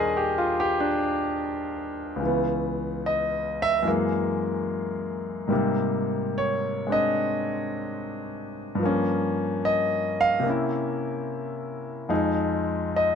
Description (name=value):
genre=solo jazz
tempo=73 BPM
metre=4/4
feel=swing 69% on 8ths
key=unclear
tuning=A4 = 440 Hz
part: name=warm concert grand piano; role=solo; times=0.0-13.2 s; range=Db2 to F5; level=-24 LUFS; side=left 1 dB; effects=none
room=light reverb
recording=nothing above 10.5 kHz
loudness=-24 LUFS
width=side -7 dB against mid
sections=0.0-13.2 A section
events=grand piano solo 0.0-13.2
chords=0.0 Ebmaj7; 2.2 Dbm7; 3.9 Gb9; 5.5 Abmaj9; 8.8 Gm7b5; 10.5 C7b9; 12.1 Fm7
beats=0.56 1.38 | 2.21 3.03 3.86 4.68 | 5.51 6.33 7.16 7.98 | 8.81 9.63 10.46 11.28 | 12.10 12.93